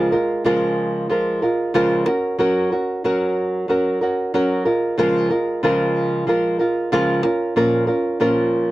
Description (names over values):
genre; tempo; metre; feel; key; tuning
acoustic pop; 93 BPM; 4/4; straight; Db major; A4 = 439 Hz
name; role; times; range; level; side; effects
nylon-string guitar; solo; 0.0-8.7 s; Bb2 to Bb4; -17 LUFS; right 1 dB; none
room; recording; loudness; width
little or no reverb; dry, close 1970s-style studio recording, faint mains hum; -17 LUFS; side -16 dB against mid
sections
0.0-8.7 A section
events
none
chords
0.0 Db6; 2.1 Gb; 4.7 Db6; 7.2 Bbm